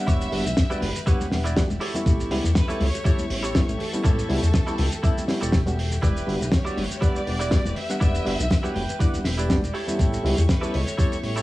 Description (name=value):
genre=nu-disco, nu disco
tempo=121 BPM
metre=4/4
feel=swing 54% on 16ths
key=E dorian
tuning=A4 = 440 Hz
part: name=rich studio violin section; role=melody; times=0.0-11.4 s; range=A4 to E5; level=-34 LUFS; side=left 1 dB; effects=tape echo
part: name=barky reed electric piano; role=accompaniment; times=0.0-11.4 s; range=G3 to F#5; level=-29 LUFS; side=equal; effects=overdrive, fast tremolo, cassette tape, tape echo
part: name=rich chamber string section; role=sustained chords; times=0.0-11.4 s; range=G4 to C#6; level=-36 LUFS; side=left 1 dB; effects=sidechain pumping, cassette tape
part: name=direct-recorded clean electric guitar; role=riff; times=0.1-11.4 s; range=E4 to G5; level=-32 LUFS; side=right 2 dB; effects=wide subtle chorus, cassette tape
part: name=chorused synth bass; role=bass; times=0.1-11.4 s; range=E1 to E2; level=-25 LUFS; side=equal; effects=none
part: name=damped 70s drum kit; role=drums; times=0.1-11.4 s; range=hi-hat, rim click, shaker, snare drum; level=-28 LUFS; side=equal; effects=cassette tape
part: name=electronic kick drum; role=drums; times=0.1-11.1 s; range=none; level=-21 LUFS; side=equal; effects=overdrive, cassette tape
part: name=congas and tambourine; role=percussion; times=0.1-11.4 s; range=none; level=-36 LUFS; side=left 2 dB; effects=none
room=little or no reverb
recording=home recording on cassette, small room ambience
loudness=-20 LUFS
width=side -17 dB against mid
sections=0.0-11.4 A section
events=clean electric guitar fill 8.5-10.0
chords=0.0 Em7; 1.8 A7; 6.0 Em7; 9.7 A7